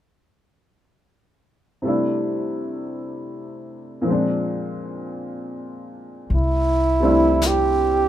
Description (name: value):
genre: jazz ballad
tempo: 54 BPM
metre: 4/4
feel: swing 66% on 8ths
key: C major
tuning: A4 = 440 Hz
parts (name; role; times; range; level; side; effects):
- warm upright piano; accompaniment; 1.8-8.1 s; Bb2 to E4; -23 LUFS; left 1 dB; none
- upright bass; bass; 6.3-8.1 s; C2; -22 LUFS; left 1 dB; none
- jazz brush drum kit; drums; 6.3-8.1 s; brushed snare drum, hi-hat, snare drum; -31 LUFS; left 4 dB; none
- breathy flugelhorn; melody; 6.4-8.1 s; E4 to G4; -19 LUFS; right 3 dB; none
room: light reverb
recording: minimal, uncompressed stereo recording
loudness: -19 LUFS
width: side -12 dB against mid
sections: 1.8-6.3 A section; 6.3-8.1 B section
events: none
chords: 1.8 C6; 4.1 Bb9; 6.3 C6